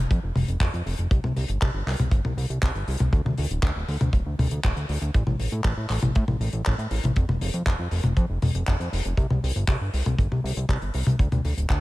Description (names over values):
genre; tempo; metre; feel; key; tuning
italo disco; 119 BPM; 4/4; straight; unclear; A4 = 440 Hz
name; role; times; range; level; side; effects
fat analog bass; bass; 0.0-11.8 s; D1 to A2; -26 LUFS; equal; none
damped 70s drum kit; drums; 0.1-11.8 s; handclaps, hi-hat, toms; -27 LUFS; left 1 dB; none
kick drum; drums; 0.1-11.8 s; none; -22 LUFS; equal; none
room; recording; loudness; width
little or no reverb; none; -22 LUFS; side -18 dB against mid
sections
0.0-11.8 A section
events
none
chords
none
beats
0.10 0.61 | 1.11 1.61 2.12 2.62 | 3.13 3.63 4.14 4.64 | 5.14 5.65 6.15 6.66 | 7.16 7.67 8.17 8.67 | 9.18 9.68 10.19 10.69 | 11.20 11.70